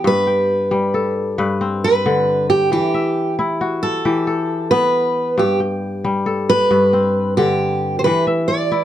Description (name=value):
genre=west african traditional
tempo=90 BPM (dotted quarters)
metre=12/8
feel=straight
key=G major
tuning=A4 = 440 Hz
part: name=kora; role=arpeggios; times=0.0-8.8 s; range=G2 to G5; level=-19 LUFS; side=left 3 dB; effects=none
part: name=fingerpicked steel-string acoustic guitar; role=melody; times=0.1-8.8 s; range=G4 to D5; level=-17 LUFS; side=right 2 dB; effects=none
room=light reverb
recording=dark, warm production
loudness=-15 LUFS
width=side -11 dB against mid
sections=0.0-8.8 A section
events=steel-string acoustic guitar solo 0.0-8.8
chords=0.1 G; 2.7 Em; 5.4 G; 8.0 E5